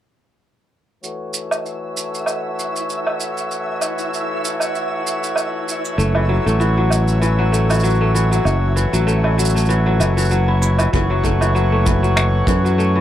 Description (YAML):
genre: folktronica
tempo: 97 BPM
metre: 4/4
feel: swing 56% on 16ths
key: F# minor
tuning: A4 = 440 Hz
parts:
  - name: accordion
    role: sustained chords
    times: 1.0-13.0 s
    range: E3 to C#5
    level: -24 LUFS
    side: left 2 dB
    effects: low-pass filter
  - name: shaker, woodblock and finger snaps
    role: drums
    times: 1.0-12.9 s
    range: none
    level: -23 LUFS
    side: right 2 dB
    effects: none
  - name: flickering grainy texture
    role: texture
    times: 1.6-10.9 s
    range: E5 to E6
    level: -30 LUFS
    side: right 3 dB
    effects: built-in reverb
  - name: kora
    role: arpeggios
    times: 6.0-13.0 s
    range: E3 to E4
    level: -20 LUFS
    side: left 1 dB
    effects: tape echo
  - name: fingered electric bass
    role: bass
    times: 6.0-13.0 s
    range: F#1 to F#2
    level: -16 LUFS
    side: equal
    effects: none
  - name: kick drum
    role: drums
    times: 10.9-12.6 s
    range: none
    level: -21 LUFS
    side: equal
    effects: none
room: little or no reverb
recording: none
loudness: -16 LUFS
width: side -12 dB against mid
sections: 1.0-10.9 A section; 10.9-13.0 B section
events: filter sweep on accordion 1.0-10.9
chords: 1.0 F#m7